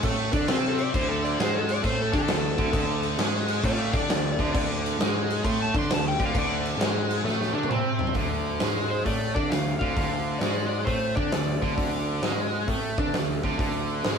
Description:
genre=blues rock power trio and southern rock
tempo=133 BPM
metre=4/4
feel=swing 66% on 8ths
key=D minor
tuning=A4 = 440 Hz
part: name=overdriven electric guitar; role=riff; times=0.0-14.2 s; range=D3 to D4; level=-28 LUFS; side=right 1 dB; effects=spring reverb
part: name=fuzz picked electric bass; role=bass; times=0.0-14.2 s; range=D2 to D3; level=-30 LUFS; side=equal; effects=overdrive
part: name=big rock drum kit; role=drums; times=0.0-14.2 s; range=crash cymbal, hi-hat, kick drum, snare drum, toms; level=-27 LUFS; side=equal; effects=none
part: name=overdriven slide guitar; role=melody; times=0.4-12.5 s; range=F4 to C6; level=-31 LUFS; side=left 2 dB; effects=none
room=moderate small room reverb, RT60 0.5 s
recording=band playing live in one room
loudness=-23 LUFS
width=side -6 dB against mid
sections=0.0-8.2 A section; 8.2-14.2 B section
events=electric slide guitar solo 0.0-8.2; drum fill 7.2-8.2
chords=0.0 D5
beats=0.03 0.48 | 0.94 1.39 1.84 2.29 | 2.74 3.19 3.64 4.09 | 4.55 5.00 5.45 5.90 | 6.35 6.80 7.25 7.70 | 8.15 8.61 9.06 9.51 | 9.96 10.42 10.87 11.33 | 11.78 12.23 12.69 13.14 | 13.60 14.05

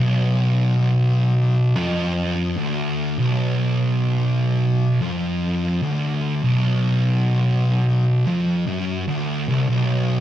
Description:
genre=metal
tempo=74 BPM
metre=4/4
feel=straight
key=B phrygian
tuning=A4 = 439 Hz
part: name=thick fuzz guitar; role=solo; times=0.0-10.2 s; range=B1 to F#2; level=-18 LUFS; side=equal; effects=distortion
room=light reverb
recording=band playing live in one room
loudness=-18 LUFS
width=side -12 dB against mid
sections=0.0-10.2 A section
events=none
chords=none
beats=0.74 1.56 2.37 | 3.18 4.00 4.81 5.62 | 6.44 7.25 8.06 8.88 | 9.69

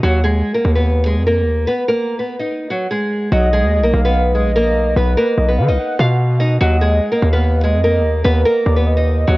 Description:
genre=hip hop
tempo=146 BPM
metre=4/4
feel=half-time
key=Eb minor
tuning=A4 = 440 Hz
part: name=nylon-string guitar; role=melody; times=0.0-9.4 s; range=Gb3 to F5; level=-17 LUFS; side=equal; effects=low-pass filter
part: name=hard-hitting 808-style bass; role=bass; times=0.0-9.4 s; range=Bb1 to D#3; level=-15 LUFS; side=equal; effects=none
part: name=warm velvety synth lead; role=second line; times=3.3-9.4 s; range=Bb4 to F#5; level=-21 LUFS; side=equal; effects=chorus, ping-pong delay
room=light reverb, studio reverb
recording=worn, warbling old tape, cassette tape, warbly pitch drift, nothing above 7.8 kHz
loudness=-13 LUFS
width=side -19 dB against mid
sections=0.0-3.3 A section; 3.3-9.4 B section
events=stop 1.7-3.3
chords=0.0 Eb5; 3.3 B6; 6.6 Eb5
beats=| 0.03 0.44 0.85 1.26 | 1.68 2.09 2.50 2.91 | 3.32 3.73 4.14 4.55 | 4.96 5.38 5.79 6.20 | 6.61 7.02 7.43 7.84 | 8.25 8.66 9.07

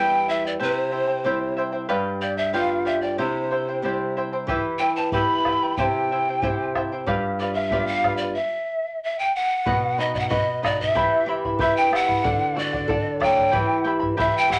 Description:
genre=andean folk, Andean ensemble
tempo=93 BPM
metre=2/4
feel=straight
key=unclear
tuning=A4 = 440 Hz
part: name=breathy mellow pan flute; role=melody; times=0.0-14.6 s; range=C5 to B5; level=-25 LUFS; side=equal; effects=none
part: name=charango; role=accompaniment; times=0.0-14.6 s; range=E4 to B5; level=-29 LUFS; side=equal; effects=none
part: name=flamenco guitar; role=accompaniment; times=0.0-14.6 s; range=E2 to B4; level=-30 LUFS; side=equal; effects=none
part: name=bombo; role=percussion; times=4.5-14.6 s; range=none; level=-31 LUFS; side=equal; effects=none
room=wet club reverb, RT60 0.6 s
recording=none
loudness=-23 LUFS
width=mono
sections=0.0-9.7 A section; 9.7-14.6 B section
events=none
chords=0.0 Em; 0.6 C; 1.9 G7; 3.2 C; 4.5 Em; 5.8 C; 7.1 G7; 8.4 N.C.; 9.7 B; 10.9 Em; 12.2 D; 13.5 Em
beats=| 0.60 1.25 | 1.89 2.54 | 3.19 3.83 | 4.48 5.13 | 5.78 6.42 | 7.07 7.72 | 8.36 9.01 | 9.65 10.30 | 10.95 11.59 | 12.23 12.88 | 13.53 14.17

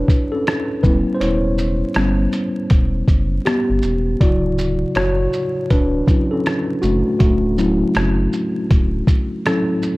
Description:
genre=lo-fi hip hop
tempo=80 BPM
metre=4/4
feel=swing 62% on 16ths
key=D major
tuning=A4 = 435 Hz
part: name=tine electric piano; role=accompaniment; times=0.0-10.0 s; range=C#3 to D5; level=-18 LUFS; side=equal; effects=medium stereo tremolo
part: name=sub bass with octave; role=bass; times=0.0-9.0 s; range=D1 to G1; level=-21 LUFS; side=equal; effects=none
part: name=lo-fi sampler-style drum kit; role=drums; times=0.1-10.0 s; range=hi-hat, kick drum, rim click, shaker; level=-17 LUFS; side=equal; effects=vintage 12-bit sampler grit
room=little or no reverb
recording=dark, warm production, vinyl crackle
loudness=-15 LUFS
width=side -21 dB against mid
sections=0.0-10.0 A section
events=tine electric piano solo 0.0-10.0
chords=0.0 Em7; 0.8 Em69; 4.2 Dmaj7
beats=0.46 | 1.21 1.96 2.71 3.46 | 4.21 4.96 5.71 6.46 | 7.21 7.96 8.71 9.46

